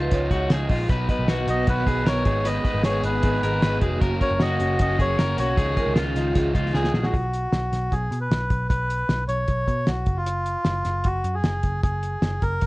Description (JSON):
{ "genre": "jangly indie pop", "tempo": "154 BPM", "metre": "4/4", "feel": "straight", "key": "unclear", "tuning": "A4 = 440 Hz", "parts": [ { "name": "vibraphone with hard mallets", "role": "second line", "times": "0.0-7.1 s", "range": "F4 to Eb5", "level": "-31 LUFS", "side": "right 2 dB", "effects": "none" }, { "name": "crunchy overdriven guitar", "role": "accompaniment", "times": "0.0-7.1 s", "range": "Gb2 to Eb4", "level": "-29 LUFS", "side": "right 3 dB", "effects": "none" }, { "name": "electric guitar at the edge of break-up", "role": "arpeggios", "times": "0.0-7.1 s", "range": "F4 to Cb5", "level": "-28 LUFS", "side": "left 3 dB", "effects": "plate reverb" }, { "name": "vintage muted picked electric bass", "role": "bass", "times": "0.0-12.7 s", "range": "F1 to Cb3", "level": "-26 LUFS", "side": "equal", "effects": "tube saturation" }, { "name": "cloth-damped thuddy drum kit", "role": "drums", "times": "0.1-12.7 s", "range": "hi-hat, kick drum, snare drum", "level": "-23 LUFS", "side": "equal", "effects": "none" }, { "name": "string machine, full ensemble", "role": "sustained chords", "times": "0.9-7.1 s", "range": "Db3 to Ab4", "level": "-33 LUFS", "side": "equal", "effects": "none" }, { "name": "melodica", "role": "melody", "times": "1.5-12.7 s", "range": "F4 to Eb5", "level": "-26 LUFS", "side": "equal", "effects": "none" } ], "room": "light reverb", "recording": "worn, warbling old tape, cassette tape, warbly pitch drift", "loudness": "-20 LUFS", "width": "side -20 dB against mid", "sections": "0.0-7.1 A section; 7.1-12.7 B section", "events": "drum fill 6.7-7.1", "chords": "0.0 Dbadd9; 0.9 Cb; 2.3 Abm; 4.0 Gb; 5.6 Dbadd9; 7.1 Cb5; 10.1 Gbsus2", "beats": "0.12 0.51 | 0.90 1.29 1.68 2.07 | 2.46 2.85 3.24 3.63 | 4.02 4.41 4.80 5.19 | 5.58 5.96 6.36 6.75 | 7.14 7.53 7.92 8.31 | 8.70 9.09 9.48 9.87 | 10.27 10.66 11.05 11.44 | 11.83 12.22 12.62" }